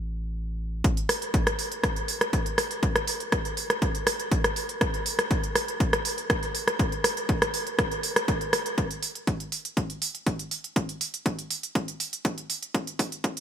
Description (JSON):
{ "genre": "melodic techno", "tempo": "121 BPM", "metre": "4/4", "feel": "straight", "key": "unclear", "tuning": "A4 = 438 Hz", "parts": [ { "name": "round analog bass", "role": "bass", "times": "0.0-0.8 s", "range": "A1", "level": "-32 LUFS", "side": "equal", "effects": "tube saturation, sidechain pumping" }, { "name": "electronic kick drum", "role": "drums", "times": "0.8-13.3 s", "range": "none", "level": "-27 LUFS", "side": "equal", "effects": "none" }, { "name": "techno drum kit", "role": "drums", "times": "0.8-13.4 s", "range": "hi-hat, rim click", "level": "-26 LUFS", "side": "right 1 dB", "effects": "gated reverb" } ], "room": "light reverb", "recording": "bright 1980s-style digital production, high-pass filter", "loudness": "-25 LUFS", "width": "side -9 dB against mid", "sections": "0.8-13.4 A section", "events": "build-up 0.8-13.4; filter sweep 0.8-13.4; drum fill 8.8-13.4", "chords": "none" }